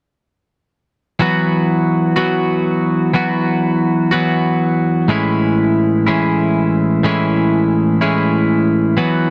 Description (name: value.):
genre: rock.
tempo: 62 BPM (dotted quarters).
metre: 6/8.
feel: straight.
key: E major.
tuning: A4 = 440 Hz.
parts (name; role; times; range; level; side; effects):
twelve-string electric guitar; solo; 1.2-9.3 s; A2 to F#4; -15 LUFS; equal; none.
room: little or no reverb.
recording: dry, close 1970s-style studio recording.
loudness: -16 LUFS.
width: mono.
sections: 1.2-9.0 A section.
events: none.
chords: 1.2 Esus2; 5.1 Amaj7.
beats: | 1.21 2.18 | 3.15 4.13 | 5.10 6.07 | 7.04 8.01 | 8.98.